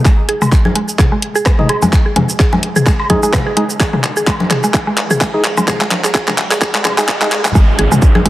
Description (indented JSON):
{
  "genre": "minimal techno",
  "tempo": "128 BPM",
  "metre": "4/4",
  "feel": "swing 56% on 16ths",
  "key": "unclear",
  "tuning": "A4 = 442 Hz",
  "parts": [
    { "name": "mallet-like synth pluck", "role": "riff", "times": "0.1-8.3 s", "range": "G#3 to G#4", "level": "-18 LUFS", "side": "right 1 dB", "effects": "chorus, sidechain pumping, tape echo" },
    { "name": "electronic kick drum", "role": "drums", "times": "0.1-8.1 s", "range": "none", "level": "-12 LUFS", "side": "equal", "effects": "none" },
    { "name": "house drum kit", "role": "drums", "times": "0.1-8.3 s", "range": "handclaps, hi-hat, rim click, shaker", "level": "-18 LUFS", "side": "equal", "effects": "none" },
    { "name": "riser, swell and downlifter", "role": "sound effects", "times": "1.3-8.3 s", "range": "none", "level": "-25 LUFS", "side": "right 2 dB", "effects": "none" },
    { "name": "electronic toms, woodblock and congas", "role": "percussion", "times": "0.4-8.2 s", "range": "none", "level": "-17 LUFS", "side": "left 2 dB", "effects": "overdrive" },
    { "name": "percussive organ stab", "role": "stabs", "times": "1.6-7.3 s", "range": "G#3 to G#4", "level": "-22 LUFS", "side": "equal", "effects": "chorus, cassette tape, dub echo" },
    { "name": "hollow knocking FM bass", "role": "bass", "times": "7.6-8.3 s", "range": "G#1", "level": "-15 LUFS", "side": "equal", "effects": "sidechain pumping, high-pass filter" }
  ],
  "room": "moderate plate reverb, RT60 1.6 s",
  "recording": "heavily compressed radio sound, multiband compression, high-pass filter",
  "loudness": "-11 LUFS",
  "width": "side -15 dB against mid",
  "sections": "0.1-7.6 A section",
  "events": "build-up 0.1-7.6; drum fill 0.1-7.6; filter sweep on synth arpeggio sound 0.1-7.6; filter sweep 0.1-7.6; swell 6.6-7.6",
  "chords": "0.1 G#5"
}